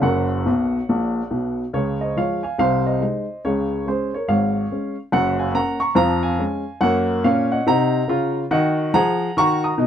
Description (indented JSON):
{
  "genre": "jazz, stride piano",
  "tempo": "141 BPM",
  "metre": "4/4",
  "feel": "swing 63% on 8ths",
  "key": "Db major",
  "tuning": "A4 = 439 Hz",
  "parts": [
    { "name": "warm upright piano", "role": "solo", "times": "0.0-9.9 s", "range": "F#1 to D#6", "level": "-18 LUFS", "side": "equal", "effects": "none" }
  ],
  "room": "light reverb",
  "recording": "close, detailed microphones",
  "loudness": "-18 LUFS",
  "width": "side -9 dB against mid",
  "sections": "0.0-1.7 A section; 1.7-9.9 B section",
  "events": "upright piano fill 0.5-1.7",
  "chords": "0.0 F#; 1.7 Db; 2.6 Ab/C; 3.4 Db; 5.1 Gb; 6.0 Db/F; 6.8 Gb; 8.5 D#m"
}